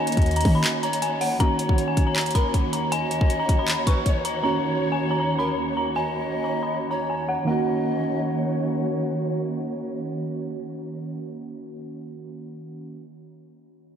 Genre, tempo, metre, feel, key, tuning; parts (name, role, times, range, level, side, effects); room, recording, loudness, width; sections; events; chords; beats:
hip hop, trap; 158 BPM; 4/4; half-time; Eb minor; A4 = 444 Hz
dark detuned synth bell; melody; 0.0-8.6 s; Gb5 to Db6; -27 LUFS; left 1 dB; chorus, low-pass filter, analog delay
mellow hollow polished pan flute; second line; 0.0-8.6 s; Bb4 to Eb5; -32 LUFS; left 4 dB; analog delay
warbly lo-fi synth keys; accompaniment; 0.0-13.0 s; Eb3 to Gb4; -28 LUFS; right 2 dB; chorus, low-pass filter
dark symphonic string section; sustained chords; 0.0-11.3 s; Eb2 to Db5; -32 LUFS; right 1 dB; low-pass filter
trap drum kit; drums; 0.1-4.3 s; handclaps, hi-hat, kick drum; -23 LUFS; equal
clean 808-style bass; bass; 0.2-0.6 s; Eb2 to Eb3; -22 LUFS; equal
wet cathedral reverb, RT60 6.6 s; dreamy mix soaked in reverb; -21 LUFS; side -8 dB against mid
0.0-1.4 A section; 1.4-7.5 B section; 7.5-10.5 C section
break 0.6-1.4
0.0 Ebm7
0.26 0.64 1.02 | 1.40 1.78 2.16 2.54 | 2.92 3.30 3.68 4.06 | 4.44 4.82 5.20 5.58 | 5.96 6.34 6.72 7.10 | 7.48 7.86 8.24 8.62 | 8.99 9.38 9.76 10.13